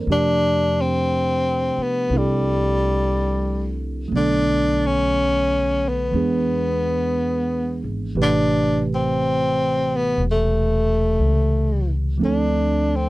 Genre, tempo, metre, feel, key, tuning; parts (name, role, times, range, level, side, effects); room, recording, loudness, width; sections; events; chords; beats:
jazz ballad; 59 BPM; 4/4; swing 68% on 8ths; A4 = 439 Hz
tine electric piano; accompaniment; 0.0-13.1 s; C3 to B4; -24 LUFS; right 3 dB
upright bass; bass; 0.0-13.1 s; E1 to F2; -24 LUFS; left 1 dB
breathy tenor saxophone; melody; 0.1-13.1 s; G3 to D4; -20 LUFS; left 1 dB
little or no reverb; dry, close 1970s-style studio recording; -18 LUFS; side -18 dB against mid
0.0-13.1 A section
0.1 F69; 4.1 Bm7; 6.1 E7; 8.2 Am9; 12.2 Dm7
| 0.07 1.08 2.09 3.10 | 4.11 5.13 6.14 7.15 | 8.16 9.18 10.19 11.20 | 12.21